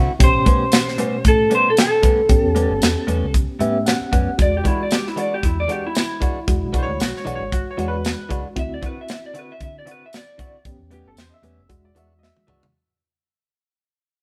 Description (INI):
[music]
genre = straight-eighth soul blues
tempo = 115 BPM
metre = 4/4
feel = swing 56% on 16ths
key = A mixolydian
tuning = A4 = 437 Hz
[part]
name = bright reed electric piano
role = accompaniment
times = 0.0-12.7 s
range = B2 to F#5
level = -29 LUFS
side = equal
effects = fast tremolo
[part]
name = direct-recorded clean electric guitar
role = stabs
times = 0.0-12.7 s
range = A2 to F#4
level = -28 LUFS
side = equal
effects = none
[part]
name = vintage muted fingered electric bass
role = bass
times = 0.0-12.7 s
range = E1 to D3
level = -27 LUFS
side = equal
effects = none
[part]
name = electric slide guitar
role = melody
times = 0.2-10.7 s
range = E4 to E5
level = -23 LUFS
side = equal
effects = none
[part]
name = tight funk drum kit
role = drums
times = 0.2-12.7 s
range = hi-hat, kick drum, snare drum, tambourine, toms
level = -20 LUFS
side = equal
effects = none
[part]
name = bright upright piano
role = second line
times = 6.8-12.6 s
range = F#4 to E5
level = -32 LUFS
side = equal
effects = none
[sound]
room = light reverb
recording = band playing live in one room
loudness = -19 LUFS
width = mono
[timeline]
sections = 0.0-12.7 A section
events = fade-out 1.0-12.7; reed electric piano fill 3.3-4.4; drum fill 12.2-12.7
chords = 0.2 A9; 4.4 E9; 8.6 D9; 10.7 A9; 11.7 E9